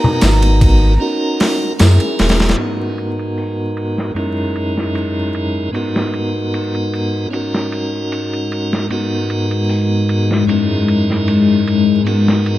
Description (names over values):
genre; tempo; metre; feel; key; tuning
trip hop; 76 BPM; 4/4; swing 53% on 16ths; G# minor; A4 = 438 Hz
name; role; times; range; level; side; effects
clean electric guitar; melody; 0.0-1.8 s; G#4; -40 LUFS; left 1 dB; none
tonewheel organ; accompaniment; 0.0-12.6 s; F#2 to A#4; -18 LUFS; right 1 dB; stopped rotary speaker, tremolo, low-pass filter, tape echo
dark analog pad; sustained chords; 0.0-12.6 s; G#3 to A#5; -19 LUFS; left 2 dB; chorus, vintage 12-bit sampler grit
congas and tambourine; percussion; 0.0-2.0 s; none; -19 LUFS; left 1 dB; none
warm sub bass; bass; 0.2-2.5 s; E1 to F#2; -11 LUFS; equal; none
boom bap sampler-style drum kit; drums; 0.2-12.6 s; hi-hat, kick drum, ride cymbal, snare drum; -21 LUFS; equal; low-pass filter on snare, low-pass filter on kick, low-pass filter on cymbals, low-pass filter on hats
room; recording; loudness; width
moderate plate reverb, RT60 2.1 s; dreamy mix soaked in reverb, vinyl crackle; -14 LUFS; side -14 dB against mid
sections
0.0-2.6 A section; 2.6-12.6 B section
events
filter sweep on tonewheel organ 2.6-12.6; filter sweep on analog synth pad 2.6-12.6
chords
0.0 G#m9; 1.0 D#m7; 1.8 F#9; 2.6 G#m9; 4.2 F#13; 5.7 G#m9; 7.3 D#m7; 8.9 G#m9; 10.5 F#13; 12.1 G#m9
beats
0.22 1.01 1.80 | 2.59 3.38 4.17 4.96 | 5.75 6.54 7.33 8.12 | 8.90 9.69 10.48 11.27 | 12.06